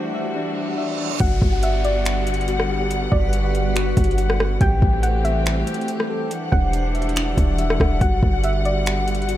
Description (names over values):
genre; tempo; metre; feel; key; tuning
hip hop, atmospheric cloud-rap; 141 BPM; 4/4; half-time; G major; A4 = 441 Hz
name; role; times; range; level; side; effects
soft round pluck; melody; 0.0-8.9 s; D5 to G5; -28 LUFS; equal; chorus, low-pass filter, digital delay
warm studio string section; sustained chords; 0.0-9.4 s; D3 to F#5; -26 LUFS; left 1 dB; sidechain pumping
soft electric-piano-like synth keys; arpeggios; 0.0-9.4 s; D4 to G5; -28 LUFS; left 3 dB; chorus, low-pass filter, digital delay
backwards swelling texture; texture; 0.0-9.4 s; E2 to D5; -31 LUFS; right 3 dB; built-in reverb
reverse cymbal and downlifter; sound effects; 0.6-4.6 s; none; -33 LUFS; right 3 dB; none
clean 808-style bass; bass; 1.2-9.4 s; E1 to A1; -21 LUFS; equal; none
smooth R&B drum kit; drums; 1.2-9.4 s; finger snaps, hi-hat, kick drum, rim click; -22 LUFS; equal; overdrive
room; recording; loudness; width
light reverb; none; -18 LUFS; side -13 dB against mid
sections
0.0-1.2 A section; 1.2-9.4 B section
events
break 0.0-1.2; reverse cymbal 0.6-1.2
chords
0.0 Em9; 1.2 Gmaj7; 4.6 Am7; 6.3 Em9; 8.0 Gmaj7